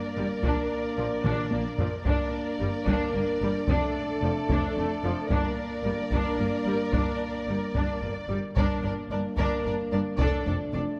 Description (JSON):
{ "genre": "cinematic, epic orchestral film score", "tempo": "74 BPM (dotted quarters)", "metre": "6/8", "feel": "straight", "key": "G minor", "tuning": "A4 = 440 Hz", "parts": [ { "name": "warm symphonic violin section", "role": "melody", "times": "0.0-10.8 s", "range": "D5", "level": "-39 LUFS", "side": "equal", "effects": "none" }, { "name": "warm symphonic violin section", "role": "second line", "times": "0.0-10.8 s", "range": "A4 to Bb4", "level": "-37 LUFS", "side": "equal", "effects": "none" }, { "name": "dark French horn section", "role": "sustained chords", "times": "0.0-11.0 s", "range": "A3 to D4", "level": "-34 LUFS", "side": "equal", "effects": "none" }, { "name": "rich symphonic viola section", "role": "accompaniment", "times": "0.2-10.8 s", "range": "F3 to D4", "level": "-36 LUFS", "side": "equal", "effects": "none" }, { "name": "rich symphonic cello section", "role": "bass", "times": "0.2-10.8 s", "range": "F2 to Bb2", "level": "-35 LUFS", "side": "equal", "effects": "none" }, { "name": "rich symphonic double bass section", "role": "bass", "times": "0.2-10.8 s", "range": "F1 to Bb1", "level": "-37 LUFS", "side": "equal", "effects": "none" }, { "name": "solo taiko drums", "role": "drums", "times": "0.4-10.7 s", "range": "none", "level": "-33 LUFS", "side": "equal", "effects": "none" } ], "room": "wet scoring stage reverb, RT60 1.6 s", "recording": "none", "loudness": "-28 LUFS", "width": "mono", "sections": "0.0-8.6 A section; 8.6-11.0 B section", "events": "drum fill 1.2-2.1", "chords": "0.4 Bb; 2.1 Gm; 3.7 Dm; 5.3 Gm; 10.2 Dm/F" }